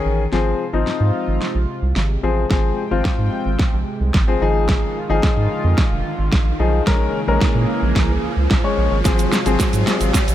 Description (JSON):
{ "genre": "dance-pop", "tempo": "110 BPM", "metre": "4/4", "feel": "straight", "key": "Ab major", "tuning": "A4 = 441 Hz", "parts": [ { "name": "warm grand piano", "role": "accompaniment", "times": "0.0-10.3 s", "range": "Eb3 to Db5", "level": "-22 LUFS", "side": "left 6 dB", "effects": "sidechain pumping" }, { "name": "round analog bass", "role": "bass", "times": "0.1-10.3 s", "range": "F1 to Bb2", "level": "-19 LUFS", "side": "right 1 dB", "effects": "sidechain pumping" }, { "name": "chorused pulse-width pad", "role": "sustained chords", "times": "0.3-10.3 s", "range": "C3 to G5", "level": "-27 LUFS", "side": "right 2 dB", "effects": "sidechain pumping" }, { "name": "pop drum kit", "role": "drums", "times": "0.3-10.3 s", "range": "hi-hat, kick drum, snare drum", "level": "-19 LUFS", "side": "right 1 dB", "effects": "none" }, { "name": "riser", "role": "sound effects", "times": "2.2-10.3 s", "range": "none", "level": "-28 LUFS", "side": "right 2 dB", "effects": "none" }, { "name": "egg shaker", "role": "percussion", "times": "9.1-10.3 s", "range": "none", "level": "-32 LUFS", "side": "right 16 dB", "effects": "none" } ], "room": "small room ambience", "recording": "none", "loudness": "-16 LUFS", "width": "side -12 dB against mid", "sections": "0.3-10.3 A section", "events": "build-up 0.3-10.3; drum fill 0.3-10.3; riser 2.2-10.3", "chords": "0.3 Ab6; 4.4 Fm7/Ab; 6.9 Bbm7; 9.1 Ab6" }